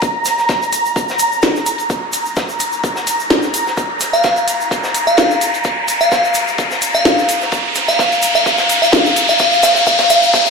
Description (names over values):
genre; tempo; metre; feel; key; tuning
minimal techno; 128 BPM; 4/4; swing 53% on 16ths; unclear; A4 = 440 Hz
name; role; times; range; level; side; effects
deep reggae drum kit; drums; 0.0-10.5 s; hi-hat, snare drum; -24 LUFS; left 2 dB; sidechain pumping on hats, high-pass filter on hats, high-pass filter on snare, high-pass filter on room
electronic kick drum; drums; 0.0-10.4 s; none; -22 LUFS; equal; high-pass filter on kick, high-pass filter on room
tube shaker; percussion; 0.0-10.5 s; none; -26 LUFS; right 1 dB; none
riser; sound effects; 0.0-10.5 s; none; -18 LUFS; equal; none
flickering grainy texture; texture; 0.0-10.5 s; Bb5; -20 LUFS; right 1 dB; built-in reverb, sidechain pumping
minimal click drum kit; drums; 0.3-10.2 s; hi-hat, snare drum; -15 LUFS; equal; none
glassy synth bell; melody; 4.1-10.5 s; F5; -14 LUFS; equal; chorus, ping-pong delay
room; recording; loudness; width
wet studio reverb, RT60 0.6 s; played on a big sound system in a bare room, stone room reverb; -12 LUFS; side -4 dB against mid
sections
0.0-10.5 A section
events
build-up 0.0-10.5; riser 0.0-10.5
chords
none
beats
| 0.02 0.49 0.96 1.43 | 1.90 2.37 2.84 3.31 | 3.77 4.24 4.71 5.18 | 5.65 6.12 6.59 7.05 | 7.52 7.99 8.46 8.93 | 9.40 9.87 10.34